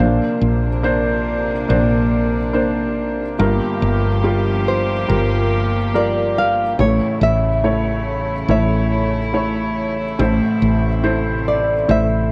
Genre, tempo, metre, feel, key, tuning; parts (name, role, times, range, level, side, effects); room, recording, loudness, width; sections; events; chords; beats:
acoustic folk-pop ballad; 70 BPM; 4/4; straight; A4 = 440 Hz
nylon-string guitar; melody; 0.0-12.3 s; C5 to F5; -22 LUFS; equal
felt-muted upright piano; accompaniment; 0.0-12.3 s; G1 to C#5; -22 LUFS; equal
warm chamber string section; sustained chords; 0.0-12.3 s; C3 to G4; -27 LUFS; equal
woody fretless electric bass; bass; 0.0-12.3 s; G1 to Bb1; -22 LUFS; equal
moderate echo chamber reverb, RT60 1.7 s, studio ambience; -18 LUFS; mono
0.0-12.3 A section
0.0 Bbadd9; 3.4 Gm7; 6.8 A; 10.2 Am
0.84 1.69 2.54 | 3.39 4.24 5.09 5.94 | 6.79 7.64 8.49 9.34 | 10.19 11.05 11.90